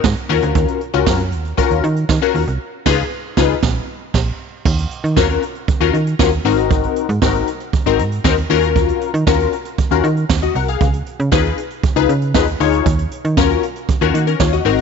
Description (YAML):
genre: early-eighties boogie funk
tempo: 117 BPM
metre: 4/4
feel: straight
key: Eb minor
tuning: A4 = 441 Hz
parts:
  - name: funky polysynth comp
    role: accompaniment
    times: 0.0-14.8 s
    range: Bb3 to Gb5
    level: -17 LUFS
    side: left 12 dB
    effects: chorus
  - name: slap-like FM bass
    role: bass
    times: 0.0-14.8 s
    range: Ab1 to Eb3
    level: -18 LUFS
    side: right 2 dB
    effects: none
  - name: jazz brush drum kit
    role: drums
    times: 0.0-14.8 s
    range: crash cymbal, hi-hat, kick drum, snare drum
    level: -19 LUFS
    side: right 5 dB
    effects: none
room: light reverb, small room ambience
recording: 1960s-style stereo, nothing above 7.7 kHz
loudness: -14 LUFS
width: side -6 dB against mid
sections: 0.0-4.7 A section; 4.7-14.8 B section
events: band accent 2.6-4.7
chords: 0.3 Ebm9; 2.6 Db9; 3.6 N.C.; 4.7 Ebm9; 6.5 Ab9; 8.5 Ebm9; 10.8 Db9; 12.9 Ebm9